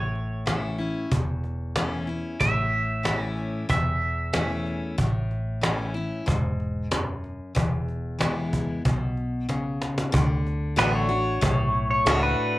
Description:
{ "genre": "honky-tonk and classic country", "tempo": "93 BPM", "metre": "4/4", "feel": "straight", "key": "A major", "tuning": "A4 = 440 Hz", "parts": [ { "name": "twangy electric guitar", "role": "second line", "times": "0.0-4.6 s", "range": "C#5 to E5", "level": "-29 LUFS", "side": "right 2 dB", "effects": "analog delay" }, { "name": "picked steel-string acoustic guitar", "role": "accompaniment", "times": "0.0-12.6 s", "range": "E2 to F#4", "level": "-29 LUFS", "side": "left 2 dB", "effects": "none" }, { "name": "vintage muted fingered electric bass", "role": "bass", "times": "0.0-12.4 s", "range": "E1 to D2", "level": "-29 LUFS", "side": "equal", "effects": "none" }, { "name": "cajon", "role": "drums", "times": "0.2-12.5 s", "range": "none", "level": "-26 LUFS", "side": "equal", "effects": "cassette tape" }, { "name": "pedal steel guitar", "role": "melody", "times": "10.8-12.6 s", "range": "B4 to C#5", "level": "-24 LUFS", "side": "equal", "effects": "cassette tape" }, { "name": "honky-tonk upright piano", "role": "accompaniment", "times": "10.8-12.5 s", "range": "F#4 to D5", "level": "-34 LUFS", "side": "right 4 dB", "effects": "none" } ], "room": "light reverb", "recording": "home recording on cassette", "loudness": "-23 LUFS", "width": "side -17 dB against mid", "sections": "0.0-10.1 A section; 10.1-12.6 B section", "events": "clean electric guitar solo 0.0-10.1; drum fill 9.5-10.1; pedal steel guitar solo 10.1-12.6", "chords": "0.0 A; 7.6 E; 10.1 D", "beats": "0.47 1.11 1.76 | 2.40 3.05 3.69 4.34 | 4.98 5.63 6.27 6.92 | 7.56 8.21 8.85 9.49 | 10.14 10.78 11.42 12.07" }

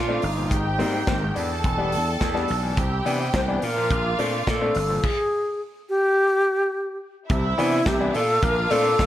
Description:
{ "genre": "disco", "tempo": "106 BPM", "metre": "4/4", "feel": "straight", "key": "C major", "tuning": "A4 = 438 Hz", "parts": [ { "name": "breathy bright wooden-headed alto flute", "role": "melody", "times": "0.0-9.1 s", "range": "Eb4 to C5", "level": "-23 LUFS", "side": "equal", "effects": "none" }, { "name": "clear studio string section", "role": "second line", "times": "0.0-9.1 s", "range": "E4 to A5", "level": "-29 LUFS", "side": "equal", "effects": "none" }, { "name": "mellow large flute ensemble", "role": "sustained chords", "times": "0.0-9.1 s", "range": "Bb4 to A6", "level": "-31 LUFS", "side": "right 4 dB", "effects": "none" }, { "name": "gritty slap bass", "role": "bass", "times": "0.0-9.1 s", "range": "E1 to C3", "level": "-27 LUFS", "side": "equal", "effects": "overdrive" }, { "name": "bright grand piano", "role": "accompaniment", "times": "0.1-8.8 s", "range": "Ab2 to D4", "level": "-28 LUFS", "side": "left 3 dB", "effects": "none" }, { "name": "modern studio drum kit", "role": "drums", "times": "0.2-9.1 s", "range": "crash cymbal, hi-hat, kick drum, snare drum", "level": "-28 LUFS", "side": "equal", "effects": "none" } ], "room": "light reverb, studio reverb", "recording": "none", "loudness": "-20 LUFS", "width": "side -12 dB against mid", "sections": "0.0-7.3 A section; 7.3-9.1 B section", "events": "none", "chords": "0.0 Bbmaj7; 0.5 Abmaj7; 1.4 Em7; 2.8 Cmaj7; 3.6 Bbmaj7; 5.0 N.C.; 7.3 Cmaj7; 8.1 Bbmaj7", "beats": "| 0.51 1.08 1.65 2.21 | 2.78 3.34 3.91 4.47 | 5.04 5.61 6.17 6.74 | 7.30 7.87 8.43 8.99" }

